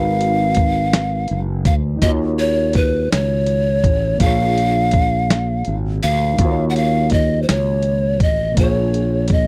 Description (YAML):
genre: slow six-eight R&B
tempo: 55 BPM (dotted quarters)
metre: 6/8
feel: straight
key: Eb minor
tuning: A4 = 440 Hz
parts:
  - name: breathy mellow pan flute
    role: melody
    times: 0.0-9.5 s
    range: Cb5 to Gb5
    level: -22 LUFS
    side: equal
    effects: slapback echo
  - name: reed electric piano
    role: accompaniment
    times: 0.0-9.5 s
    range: Bb2 to Db5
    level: -27 LUFS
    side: equal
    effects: none
  - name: fretless electric bass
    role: bass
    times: 0.0-9.5 s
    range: Gb1 to Eb2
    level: -22 LUFS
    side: equal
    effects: none
  - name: dusty soul sampler-style drum kit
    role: drums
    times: 0.2-9.5 s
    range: hi-hat, kick drum, snare drum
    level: -20 LUFS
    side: equal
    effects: none
room: little or no reverb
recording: dry, close 1970s-style studio recording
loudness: -17 LUFS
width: mono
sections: 0.0-9.5 A section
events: none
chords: 0.0 Abm7; 2.0 Ebm7; 4.2 Bbm7; 6.4 Ebm7; 8.6 Bbm7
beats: 0.93 | 2.02 3.11 | 4.21 5.30 | 6.39 7.48 | 8.57